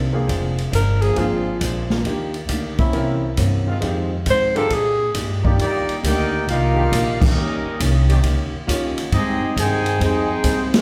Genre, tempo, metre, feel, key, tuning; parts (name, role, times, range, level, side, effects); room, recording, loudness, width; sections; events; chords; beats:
jazz, big band swing; 136 BPM; 4/4; swing 67% on 8ths; Eb major; A4 = 440 Hz
archtop guitar, miked and amplified; accompaniment; 0.0-10.7 s; F2 to G4; -30 LUFS; equal
upright bass; bass; 0.0-10.8 s; F1 to Bb2; -24 LUFS; equal
clear grand piano; accompaniment; 0.1-6.0 s; Ab3 to D5; -30 LUFS; equal
warm trombone section; sustained chords; 0.1-9.1 s; D3 to Ab4; -31 LUFS; equal
swinging big-band drum kit; drums; 0.3-10.8 s; crash cymbal, hi-hat, kick drum, ride cymbal, snare drum; -27 LUFS; equal
breathy alto saxophone; melody; 0.8-1.6, 4.3-5.2 s; F4 to C5; -22 LUFS; equal
clear trumpet section; melody; 5.6-10.8 s; Bb3 to Ab5; -26 LUFS; equal
warm trombone section; second line; 5.6-10.8 s; C3 to Ab4; -26 LUFS; equal
wet large studio reverb, RT60 1.3 s; heard from further back in the room; -20 LUFS; mono
0.0-5.6 A section; 5.6-10.8 B section
alto saxophone solo 0.0-5.6; band accent 7.1, 10.7
0.3 Bb7; 2.1 Ebmaj7; 2.9 C7b9; 3.8 Fm7; 4.7 Bb6; 5.6 Ebmaj7; 7.3 Eb7; 9.1 Abmaj7
| 0.29 0.73 1.17 1.61 | 2.05 2.49 2.93 3.38 | 3.82 4.26 4.70 5.14 | 5.58 6.03 6.47 6.91 | 7.35 7.79 8.23 8.67 | 9.11 9.55 10.00 10.44